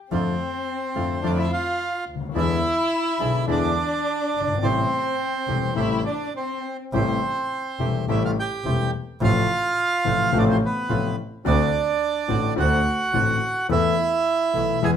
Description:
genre	tango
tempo	107 BPM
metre	4/4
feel	rubato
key	A minor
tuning	A4 = 442 Hz
part	bandoneon	melody	0.1-14.9 s	B3 to G#5	-24 LUFS	right 4 dB	none
part	warm violin	second line	0.1-6.8, 14.8-14.9 s	C4 to G#4	-29 LUFS	left 5 dB	none
part	warm concert grand piano	accompaniment	0.1-15.0 s	E1 to A4	-25 LUFS	left 5 dB	none
part	bandoneon	stabs	0.1-15.0 s	G#3 to G4	-32 LUFS	right 4 dB	none
part	rich double bass	bass	0.1-15.0 s	E1 to F2	-26 LUFS	right 2 dB	none
room	moderate large studio reverb, RT60 0.9 s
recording	minimal, uncompressed stereo recording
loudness	-20 LUFS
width	side -8 dB against mid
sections	0.0-6.9 A section; 6.9-15.0 B section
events	none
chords	0.1 Dm/F; 2.4 E7; 4.6 Am7; 9.2 F/A; 11.5 D7; 13.7 Esus4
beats	| 0.11 0.67 1.24 1.79 | 2.35 2.92 3.48 4.05 | 4.62 5.19 5.77 6.35 | 6.94 7.51 8.08 8.65 | 9.21 9.77 10.33 10.89 | 11.45 12.01 12.57 13.13 | 13.70 14.26 14.82

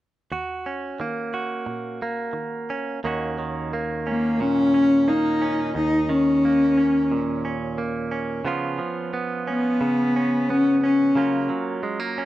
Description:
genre	folk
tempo	89 BPM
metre	4/4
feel	straight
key	Eb minor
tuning	A4 = 440 Hz
part	direct-recorded clean electric guitar	accompaniment	0.3-12.3 s	Eb2 to Gb4	-26 LUFS	right 3 dB	none
part	warm cello	melody	4.1-11.5 s	Bb3 to Eb4	-19 LUFS	left 1 dB	none
room	light reverb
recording	dry, close 1970s-style studio recording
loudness	-20 LUFS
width	side -14 dB against mid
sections	0.3-3.0 A section; 3.0-12.3 B section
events	none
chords	0.3 Ebm7; 8.5 Db7; 11.2 Gbmaj7/Db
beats	| 0.31 0.99 1.67 2.35 | 3.03 3.71 4.39 5.08 | 5.75 6.43 7.11 7.78 | 8.45 9.13 9.80 10.48 | 11.15 11.83

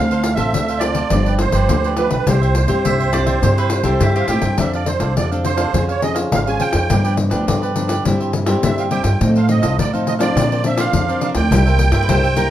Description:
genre	samba and choro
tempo	104 BPM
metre	4/4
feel	straight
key	C major, F major from 4.6 s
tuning	A4 = 443 Hz
part	musette accordion	melody	0.0-12.5 s	B4 to Ab5	-22 LUFS	right 6 dB	none
part	cavaquinho	accompaniment	0.0-12.5 s	D4 to F5	-26 LUFS	right 5 dB	none
part	nylon-string guitar	accompaniment	0.0-12.5 s	G2 to A4	-22 LUFS	left 3 dB	none
part	upright bass	bass	0.0-12.5 s	G1 to Bb2	-18 LUFS	equal	none
part	pandeiro	percussion	0.1-12.5 s	none	-22 LUFS	left 4 dB	none
part	mandolin	second line	2.9-4.6, 12.0-12.5 s	G4 to E5	-24 LUFS	equal	none
room	moderate studio reverb, RT60 0.8 s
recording	none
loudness	-14 LUFS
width	side -12 dB against mid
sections	0.0-4.6 A section; 4.6-12.5 B section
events	none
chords	0.0 Dm7; 1.1 G7; 2.3 C; 4.6 F6; 5.7 Dbmaj7/F; 6.9 G7; 8.1 C/G; 9.2 F7; 10.4 Bbadd9; 11.5 C7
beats	0.54 1.12 1.70 | 2.27 2.85 3.43 4.01 | 4.59 5.17 5.74 6.32 | 6.90 7.48 8.05 8.63 | 9.21 9.79 10.36 10.94 | 11.52 12.09

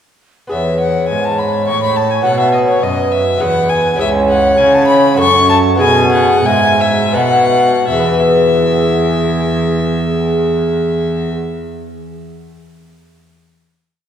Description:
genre	classical, baroque-style sonata movement with continuo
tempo	78-105 BPM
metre	3/4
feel	rubato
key	E major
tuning	A4 = 441 Hz
part	warm violin	melody	0.5-11.3 s	C#5 to C#6	-16 LUFS	left 3 dB	none
part	mellow baroque flute	second line	0.5-11.3 s	G#4 to E5	-16 LUFS	right 1 dB	none
part	lute	accompaniment	0.5-11.6 s	E2 to E5	-17 LUFS	left 1 dB	none
part	warm cello	bass	0.5-11.3 s	C#2 to C#3	-17 LUFS	right 2 dB	none
room	wet church reverb, RT60 3.0 s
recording	recorded in a church or concert hall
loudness	-11 LUFS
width	side -9 dB against mid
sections	0.5-7.9 A section; 7.9-12.4 final chord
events	slowing down 3.1-7.9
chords	0.5 E; 2.3 B5; 3.4 E; 4.0 C#m; 5.2 F#m; 5.8 E/B; 7.2 B7; 7.9 E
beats	| 0.52 1.10 1.69 | 2.27 2.85 3.43 | 4.01 4.59 5.19 | 5.80 6.46 7.16 | 7.91 8.66 9.41 | 10.17 10.92

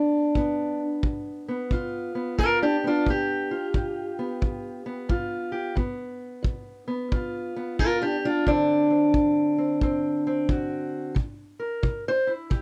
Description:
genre	acoustic country blues, solo or duo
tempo	89 BPM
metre	4/4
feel	swing 64% on 8ths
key	G mixolydian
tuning	A4 = 442 Hz
part	fingerpicked steel-string acoustic guitar	melody	0.0-12.6 s	D2 to C5	-26 LUFS	equal	none
part	kick drum	drums	0.4-12.6 s	none	-30 LUFS	equal	none
room	light reverb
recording	none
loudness	-26 LUFS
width	mono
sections	0.0-12.6 A section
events	steel-string acoustic guitar solo 0.0-12.6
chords	0.0 G7; 8.5 D7; 11.2 C7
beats	| 0.36 1.04 1.72 2.39 | 3.07 3.75 4.42 5.10 | 5.77 6.45 7.12 7.80 | 8.47 9.15 9.82 10.50 | 11.17 11.85 12.52

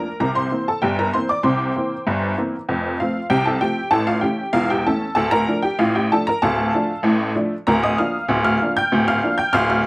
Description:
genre	ragtime piano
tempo	96 BPM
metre	2/4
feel	straight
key	unclear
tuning	A4 = 438 Hz
part	honky-tonk upright piano	solo	0.0-9.8 s	D1 to G6	-17 LUFS	equal	none
room	light reverb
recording	recorded outdoors, with no room sound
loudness	-17 LUFS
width	side -29 dB against mid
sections	0.0-9.9 A section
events	none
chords	0.2 C7; 2.7 F; 3.9 A7; 5.2 Dm; 7.7 Bb/D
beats	| 0.19 0.82 | 1.44 2.07 | 2.69 3.31 | 3.94 4.56 | 5.18 5.80 | 6.43 7.05 | 7.67 8.29 | 8.91 9.53

